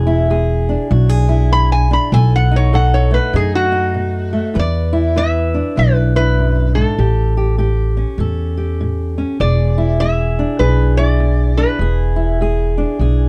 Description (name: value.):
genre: acoustic country blues, solo or duo.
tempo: 99 BPM.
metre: 4/4.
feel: swing 62% on 8ths.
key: E mixolydian.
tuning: A4 = 439 Hz.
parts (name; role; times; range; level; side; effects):
fingerpicked steel-string acoustic guitar; accompaniment; 0.0-13.3 s; E2 to B4; -22 LUFS; equal; none.
upright bass; bass; 0.0-13.3 s; E1 to F#2; -17 LUFS; equal; none.
metal-body resonator slide guitar; melody; 1.5-12.7 s; F#4 to B5; -22 LUFS; equal; none.
room: light reverb.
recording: dark, warm production.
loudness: -15 LUFS.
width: mono.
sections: 0.0-4.6 A section; 4.6-13.3 B section.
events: resonator guitar played with a steel bar solo 0.0-4.6.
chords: 0.0 E7; 2.1 B7; 4.6 E7(no3); 7.0 A7; 9.4 E7.